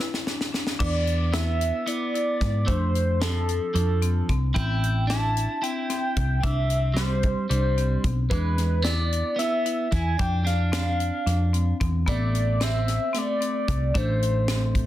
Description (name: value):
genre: progressive instrumental, band music in an uneven meter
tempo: 224 BPM (eighths)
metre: 7/8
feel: straight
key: A minor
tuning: A4 = 440 Hz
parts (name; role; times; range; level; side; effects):
- pulse-width lead; melody; 0.0-14.9 s; A4 to A5; -28 LUFS; equal; chorus, plate reverb
- marimba with medium mallets; arpeggios; 0.0-14.8 s; B3 to E4; -33 LUFS; left 6 dB; none
- tight funk drum kit; drums; 0.0-14.9 s; crash cymbal, hi-hat, kick drum, snare drum; -29 LUFS; equal; none
- electric guitar at the edge of break-up; second line; 0.8-14.9 s; F3 to E4; -32 LUFS; right 4 dB; none
- hollow-body short-scale picked electric bass; bass; 0.8-14.9 s; A1 to G#2; -24 LUFS; equal; none
room: light reverb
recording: dense, heavily limited modern master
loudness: -22 LUFS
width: side -13 dB against mid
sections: 0.8-14.9 A section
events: break 0.0-0.8; drum fill 0.0-0.8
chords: 0.0 G (rootless); 0.8 E7; 2.7 Dm7/F; 4.6 Am7; 6.4 Cmaj7; 8.3 E7; 10.2 Dm7/F; 12.1 Am